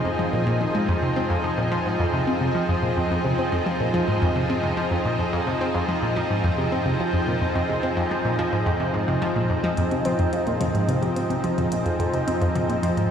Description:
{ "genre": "ambient, sequencer-driven space music", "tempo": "108 BPM", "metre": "4/4", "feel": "straight", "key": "F minor", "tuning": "A4 = 440 Hz", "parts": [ { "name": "lush unison pad", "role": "sustained chords", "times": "0.0-13.1 s", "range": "F3 to Ab4", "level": "-24 LUFS", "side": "equal", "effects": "chorus" }, { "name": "analog pluck", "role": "riff", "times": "0.1-13.0 s", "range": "F2 to C4", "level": "-23 LUFS", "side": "equal", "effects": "chorus, analog delay" }, { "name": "minimal click drum kit", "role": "percussion", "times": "9.8-13.1 s", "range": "hi-hat, toms", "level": "-33 LUFS", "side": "left 2 dB", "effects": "analog delay" } ], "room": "wet scoring stage reverb, RT60 1.9 s, digital ambience", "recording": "played on a big sound system in a bare room, stone room reverb", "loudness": "-21 LUFS", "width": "side -8 dB against mid", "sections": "0.0-13.1 A section", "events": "none", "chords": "0.0 Fm7", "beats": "0.33 | 0.89 1.44 2.00 2.55 | 3.11 3.66 4.22 4.78 | 5.33 5.89 6.44 7.00 | 7.55 8.11 8.66 9.22 | 9.78 10.33 10.89 11.44 | 12.00 12.55 13.11" }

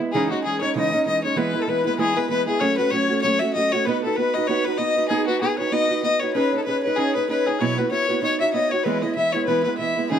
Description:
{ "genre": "celtic folk, Celtic reel", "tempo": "192 BPM", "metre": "4/4", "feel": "swing 57% on 8ths", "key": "E major", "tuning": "A4 = 440 Hz", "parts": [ { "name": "fingerpicked acoustic archtop guitar", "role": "accompaniment", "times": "0.0-10.2 s", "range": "B2 to C#5", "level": "-23 LUFS", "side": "right 4 dB", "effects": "none" }, { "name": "rich fiddle", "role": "melody", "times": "0.1-10.2 s", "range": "F#4 to E5", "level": "-23 LUFS", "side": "left 3 dB", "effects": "plate reverb" }, { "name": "bright reedy wooden flute", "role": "second line", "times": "0.1-10.1 s", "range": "F#4 to E5", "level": "-28 LUFS", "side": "left 5 dB", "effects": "none" } ], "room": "moderate studio reverb, RT60 0.5 s", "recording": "none", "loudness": "-19 LUFS", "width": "side -8 dB against mid", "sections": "0.1-10.1 A section", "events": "none", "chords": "0.1 C#madd9; 1.4 E; 2.6 F#m; 3.9 B; 6.4 C#sus2; 7.6 Bsus4; 8.2 Badd9; 8.9 E", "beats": "| 0.12 0.43 0.74 1.05 | 1.37 1.68 1.99 2.30 | 2.62 2.93 3.24 3.55 | 3.86 4.17 4.49 4.80 | 5.11 5.42 5.74 6.05 | 6.36 6.67 6.98 7.30 | 7.61 7.92 8.23 8.54 | 8.86 9.17 9.48 9.79 | 10.10" }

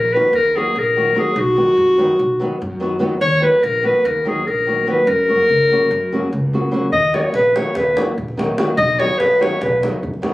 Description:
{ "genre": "balkan folk, Balkan wedding band", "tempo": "291 BPM (eighths)", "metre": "9/8", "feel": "straight", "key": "Eb minor", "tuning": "A4 = 441 Hz", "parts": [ { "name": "clear clarinet", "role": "melody", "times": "0.0-9.8 s", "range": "F#4 to Eb5", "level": "-15 LUFS", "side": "left 1 dB", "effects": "plate reverb" }, { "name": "upright bass", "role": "bass", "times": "0.0-10.3 s", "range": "Bb1 to F#2", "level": "-25 LUFS", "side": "equal", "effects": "none" }, { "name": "flamenco guitar", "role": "accompaniment", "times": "0.1-10.3 s", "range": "Db3 to Gb4", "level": "-21 LUFS", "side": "equal", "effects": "none" }, { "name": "davul", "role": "percussion", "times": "6.9-10.3 s", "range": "none", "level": "-24 LUFS", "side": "equal", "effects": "none" } ], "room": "moderate small room reverb, RT60 0.5 s", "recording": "recorded on a phone in the room, club reverb", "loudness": "-14 LUFS", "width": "side -17 dB against mid", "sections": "0.0-10.3 A section", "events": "none", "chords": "0.0 Ebm; 1.4 B; 3.2 Ebm; 5.1 Gb; 6.9 Ebm; 8.8 B", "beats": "0.12 0.32 0.53 0.73 0.94 1.15 | 1.35 1.56 1.76 1.97 2.18 2.38 2.59 2.79 3.00 | 3.21 3.41 3.62 3.83 4.03 4.24 4.44 4.65 4.86 | 5.06 5.27 5.47 5.68 5.89 6.09 6.30 6.51 6.71 | 6.92 7.12 7.33 7.54 7.74 7.95 8.16 8.36 8.57 | 8.77 8.98 9.19 9.39 9.60 9.80 10.01 10.22" }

